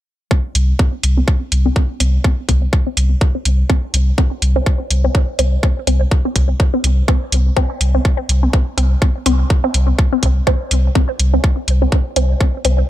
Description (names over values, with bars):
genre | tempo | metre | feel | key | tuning
minimal techno | 124 BPM | 4/4 | swing 57% on 16ths | unclear | A4 = 436 Hz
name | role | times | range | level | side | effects
resonant blip pluck | riff | 0.3-12.7 s | C4 | -22 LUFS | left 1 dB | phaser, sidechain pumping, tape echo
electronic kick drum | drums | 0.3-12.5 s | none | -14 LUFS | equal | none
saturated sub bass | bass | 0.6-12.8 s | C2 | -14 LUFS | equal | sidechain pumping
electronic hi-hat | drums | 0.6-12.8 s | none | -20 LUFS | equal | none
room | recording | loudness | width
digital ambience | echo-heavy mix | -13 LUFS | side -13 dB against mid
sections
0.3-12.9 A section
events
filter sweep on synth pluck 0.3-12.9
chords
0.3 C5